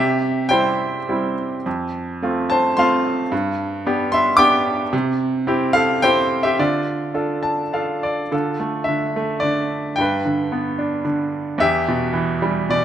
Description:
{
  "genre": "classical, lyrical solo piano",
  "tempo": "98-114 BPM",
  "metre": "3/4",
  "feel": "rubato",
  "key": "D dorian",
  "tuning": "A4 = 440 Hz",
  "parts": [
    { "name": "bright baby grand piano", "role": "solo", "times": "0.0-12.8 s", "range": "E2 to D6", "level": "-17 LUFS", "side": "equal", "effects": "none" }
  ],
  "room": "moderate recital hall reverb, RT60 1.7 s",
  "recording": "none",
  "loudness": "-17 LUFS",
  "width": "side -10 dB against mid",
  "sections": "0.0-8.3 A section; 8.3-12.8 B section",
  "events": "grand piano fill 7.2-8.3",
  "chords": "0.0 C; 1.7 F; 3.3 G; 4.9 C; 6.6 Dm; 10.0 G; 11.6 Em"
}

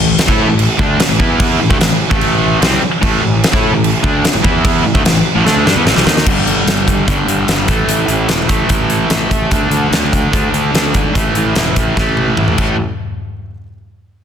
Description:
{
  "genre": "hard rock",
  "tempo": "148 BPM",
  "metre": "4/4",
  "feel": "straight",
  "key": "unclear",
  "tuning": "A4 = 436 Hz",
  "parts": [
    { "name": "sludgy distorted guitar", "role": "riff", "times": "0.0-12.8 s", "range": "G2 to A4", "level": "-15 LUFS", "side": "equal", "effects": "overdrive" },
    { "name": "fuzz fingered electric bass", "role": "bass", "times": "0.0-12.8 s", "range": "E1 to A2", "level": "-18 LUFS", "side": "equal", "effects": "overdrive" },
    { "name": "huge arena drum kit", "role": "drums", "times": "0.2-12.7 s", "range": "crash cymbal, hi-hat, kick drum, snare drum, toms", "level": "-14 LUFS", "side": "equal", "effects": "none" }
  ],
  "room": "little or no reverb",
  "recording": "dense, heavily limited modern master",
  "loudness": "-11 LUFS",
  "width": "side -8 dB against mid",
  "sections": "0.0-6.3 A section; 6.3-12.8 B section; 12.8-14.2 C section",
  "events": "drum fill 5.5-6.3, 12.0-12.8",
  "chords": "0.0 A5; 1.2 E5; 1.6 Am; 4.4 E5; 4.8 Am; 6.3 G5; 7.7 A5; 9.5 D5; 11.2 A5; 12.8 N.C."
}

